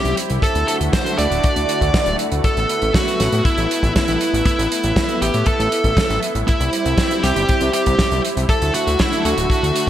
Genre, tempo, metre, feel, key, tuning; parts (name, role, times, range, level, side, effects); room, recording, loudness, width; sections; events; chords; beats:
italo disco; 119 BPM; 4/4; straight; A dorian; A4 = 440 Hz
dark smooth lead guitar; melody; 0.0-9.9 s; E4 to D5; -20 LUFS; equal; overdrive, digital delay
lush unison pad; sustained chords; 0.0-9.9 s; D3 to F#4; -23 LUFS; right 1 dB; chorus
fat analog bass; bass; 0.0-9.9 s; D1 to A2; -21 LUFS; equal
damped 70s drum kit; drums; 0.1-9.9 s; hi-hat, snare drum; -23 LUFS; right 1 dB; small room ambience, gated reverb
kick drum; drums; 0.4-9.9 s; -19 LUFS; equal; small room ambience
moderate lush hall reverb, RT60 2.1 s; bright 1980s-style digital production, faint mains hum; -15 LUFS; side -11 dB against mid
0.0-9.9 A section
0.4 Dadd9; 2.4 Asus2; 6.5 C; 8.5 Dadd9
| 0.43 0.93 1.44 1.94 | 2.44 2.95 3.45 3.96 | 4.46 4.97 5.47 5.97 | 6.48 6.98 7.49 7.99 | 8.49 9.00 9.50